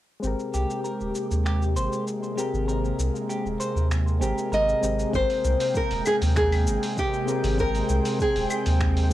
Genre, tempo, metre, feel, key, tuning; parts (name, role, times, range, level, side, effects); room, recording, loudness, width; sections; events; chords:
sunset chillout; 98 BPM; 4/4; straight; Ab major; A4 = 440 Hz
soft electric-piano-like synth keys; accompaniment; 0.2-9.1 s; Ab3 to G5; -31 LUFS; moving between left 4 dB and right 4 dB; chorus, auto-pan, low-pass filter, cassette tape, tape echo
airy breathy pad; sustained chords; 0.2-9.1 s; C3 to G5; -30 LUFS; equal; chorus, cassette tape
round analog bass; bass; 0.2-9.1 s; Eb1 to Eb2; -24 LUFS; equal
dusty soul sampler-style drum kit; drums; 0.2-9.1 s; cabasa, claves, finger snaps, hi-hat; -36 LUFS; left 1 dB; cassette tape
semi-hollow electric guitar; arpeggios; 0.5-4.8 s; G4 to C5; -34 LUFS; right 1 dB; low-pass filter, cassette tape, tape echo
nylon-string guitar; melody; 4.5-9.1 s; G4 to Eb5; -25 LUFS; equal; cassette tape, tape echo, plate reverb
electronic kick drum; drums; 5.1-8.9 s; -30 LUFS; equal; overdrive, cassette tape
moderate studio reverb, RT60 0.6 s; home recording on cassette; -22 LUFS; side -14 dB against mid
0.2-5.1 A section; 5.1-9.1 B section
filter sweep on analog synth bass 0.2-5.1
0.2 Abmaj9